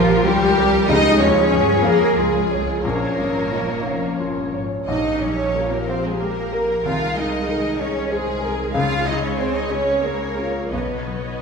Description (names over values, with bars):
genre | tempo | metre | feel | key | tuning
cinematic, emotional film score for orchestra | 84-96 BPM | 3/4 | rubato | Db lydian | A4 = 440 Hz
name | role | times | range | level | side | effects
warm symphonic violin section | melody | 0.0-11.4 s | F4 to F5 | -31 LUFS | left 1 dB | none
mellow small flute group | second line | 0.0-11.4 s | F4 to F5 | -28 LUFS | left 2 dB | none
rich studio violin section | second line | 0.0-11.4 s | F4 to F5 | -28 LUFS | equal | none
warm clarinet | second line | 0.0-11.4 s | F4 to F5 | -30 LUFS | right 1 dB | none
felt-muted upright piano | accompaniment | 0.0-11.4 s | Bb1 to F5 | -27 LUFS | left 1 dB | none
rich symphonic viola section | accompaniment | 0.0-11.4 s | F4 to Eb5 | -29 LUFS | right 1 dB | none
mellow French horn section | sustained chords | 0.0-11.4 s | Db4 to C5 | -24 LUFS | left 2 dB | none
concert harp | arpeggios | 0.0-11.4 s | Bb2 to Db5 | -30 LUFS | left 6 dB | none
clear symphonic cello section | bass | 0.0-11.4 s | F3 to F4 | -24 LUFS | right 3 dB | none
rich symphonic double bass section | bass | 0.0-11.4 s | F1 to G2 | -28 LUFS | right 2 dB | none
timpani | percussion | 0.9-1.8 s | Db3 | -28 LUFS | right 1 dB | none
room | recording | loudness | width
wet recital hall reverb, RT60 1.7 s | heard from further back in the room | -17 LUFS | side -5 dB against mid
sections
0.0-11.4 A section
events
none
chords
0.0 Ebadd9; 0.9 Db; 2.8 Bbm; 4.9 Ebadd9/Bb; 6.8 Abadd9/C; 8.8 Db; 10.7 Cbadd9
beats
0.26 | 0.89 1.52 2.17 | 2.83 3.51 4.19 | 4.88 5.55 6.20 | 6.85 7.49 8.12 | 8.75 9.39 10.04 | 10.71